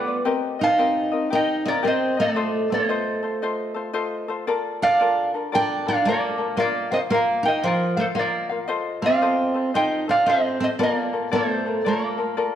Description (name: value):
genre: Hawaiian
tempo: 114 BPM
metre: 4/4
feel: swing 64% on 8ths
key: Bb major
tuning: A4 = 440 Hz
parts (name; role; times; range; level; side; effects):
- metal-body resonator slide guitar; melody; 0.0-12.6 s; F4 to A5; -22 LUFS; right 1 dB; none
- picked steel-string acoustic guitar; second line; 0.0-12.6 s; F3 to Eb4; -26 LUFS; right 2 dB; none
- ukulele; accompaniment; 0.0-12.6 s; C4 to F5; -26 LUFS; left 4 dB; none
room: moderate recital hall reverb, RT60 1.7 s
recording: none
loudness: -20 LUFS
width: side -10 dB against mid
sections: 0.0-12.6 A section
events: none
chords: 0.3 Cm7; 2.4 F7; 4.5 Bbmaj7; 6.6 Ebsus2; 8.7 F7; 10.8 Bbmaj7